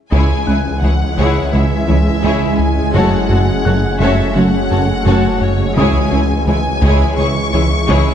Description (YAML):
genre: cinematic, hybrid orchestral and electronic film score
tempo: 85 BPM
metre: 4/4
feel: straight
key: C# minor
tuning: A4 = 441 Hz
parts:
  - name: clear symphonic violin section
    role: melody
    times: 0.1-8.1 s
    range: C#5 to C#6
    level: -22 LUFS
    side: left 3 dB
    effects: none
  - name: warm symphonic violin section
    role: second line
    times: 0.1-8.1 s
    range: G#4 to C#5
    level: -23 LUFS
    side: left 5 dB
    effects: none
  - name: rich symphonic viola section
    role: accompaniment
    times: 0.1-8.1 s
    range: G#3 to F#4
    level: -21 LUFS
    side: equal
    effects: none
  - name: bright trombone section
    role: sustained chords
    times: 0.1-8.1 s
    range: C#3 to G#3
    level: -24 LUFS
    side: right 3 dB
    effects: none
  - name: granular cloud pad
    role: sustained chords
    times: 1.1-8.1 s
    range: E3 to G#5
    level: -22 LUFS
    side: equal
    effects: built-in reverb
  - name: thumb-piano-like synth pluck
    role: arpeggios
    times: 0.1-8.1 s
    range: C#3 to F#4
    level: -23 LUFS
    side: left 2 dB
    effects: chorus
  - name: round analog bass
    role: riff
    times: 0.1-8.1 s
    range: C#2 to F#3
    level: -18 LUFS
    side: right 1 dB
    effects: none
  - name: clear symphonic double bass section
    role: bass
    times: 0.1-8.0 s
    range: F#1 to C#2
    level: -24 LUFS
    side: right 2 dB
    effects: none
  - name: rich symphonic cello section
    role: bass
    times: 0.1-8.0 s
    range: C#2 to F#2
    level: -21 LUFS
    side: right 2 dB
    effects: none
  - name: snarling distorted saw bass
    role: bass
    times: 0.1-8.1 s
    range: F#1 to C#2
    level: -21 LUFS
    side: equal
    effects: distortion
  - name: taiko ensemble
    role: drums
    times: 0.1-1.5, 5.8-8.1 s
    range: none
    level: -22 LUFS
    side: equal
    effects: none
  - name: dark concert grand piano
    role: texture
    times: 0.5-8.1 s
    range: D#6 to F#6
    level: -32 LUFS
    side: left 1 dB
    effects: digital delay
room: moderate scoring stage reverb, RT60 1.9 s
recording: dark, warm production, nothing above 10.3 kHz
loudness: -12 LUFS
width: side -9 dB against mid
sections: 0.1-8.1 A section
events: none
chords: 0.1 C#m; 2.9 F#madd9; 5.8 C#m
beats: | 0.12 0.83 1.54 2.24 | 2.95 3.65 4.36 5.07 | 5.77 6.48 7.18 7.89